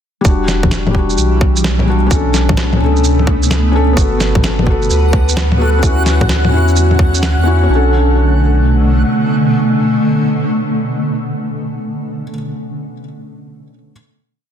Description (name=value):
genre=future garage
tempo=129 BPM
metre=4/4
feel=swing 65% on 16ths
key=B minor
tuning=A4 = 440 Hz
part: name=felt-muted upright piano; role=accompaniment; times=0.2-13.9 s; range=G3 to A4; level=-19 LUFS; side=left 4 dB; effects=sidechain pumping, ping-pong delay
part: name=granular cloud pad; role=sustained chords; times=1.0-12.2 s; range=B2 to B4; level=-17 LUFS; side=equal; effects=built-in reverb, sidechain pumping
part: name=warm sub bass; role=bass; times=0.2-9.0 s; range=E1 to E2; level=-14 LUFS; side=right 1 dB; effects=sidechain pumping
part: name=electronic kick drum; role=drums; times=0.2-7.1 s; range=none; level=-13 LUFS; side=right 1 dB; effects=overdrive
part: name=electronic shaker, snare drum and bongos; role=drums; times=0.2-7.3 s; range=none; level=-18 LUFS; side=left 1 dB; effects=none
part: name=backwards swelling texture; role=texture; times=5.0-7.7 s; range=F#5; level=-24 LUFS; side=equal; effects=built-in reverb
room=light reverb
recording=dense, heavily limited modern master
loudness=-11 LUFS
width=side -9 dB against mid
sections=0.2-7.7 groove; 7.7-11.4 final chord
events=none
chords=0.2 Em7; 2.1 Bm7; 4.0 Gmaj7; 5.8 Dmaj7; 7.7 Bm7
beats=| 0.25 0.71 1.18 1.64 | 2.11 2.57 3.04 3.50 | 3.97 4.43 4.90 5.36 | 5.83 6.29 6.76 7.22 | 7.69 8.15 8.62 9.09 | 9.55 10.02 10.48 10.95